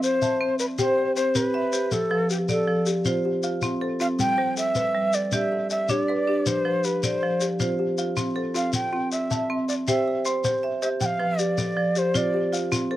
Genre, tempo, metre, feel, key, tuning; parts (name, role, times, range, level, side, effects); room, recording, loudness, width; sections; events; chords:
southern african traditional, mbira-style interlocking cycle; 106 BPM (dotted quarters); 12/8; straight; C major; A4 = 440 Hz
breathy mellow Native American-style cedar flute; melody; 0.0-12.5 s; G4 to G5; -25 LUFS; equal
kalimba; arpeggios; 0.0-13.0 s; F3 to C6; -29 LUFS; left 3 dB; slapback echo
marimba with hard mallets; arpeggios; 0.0-13.0 s; F3 to A5; -27 LUFS; right 2 dB
shekere; percussion; 0.0-12.9 s; -30 LUFS; left 3 dB
little or no reverb; recorded outdoors, with no room sound; -22 LUFS; side -14 dB against mid
0.0-13.0 A section
0.0 C; 1.9 F; 4.2 G; 6.5 F; 8.7 C; 11.0 F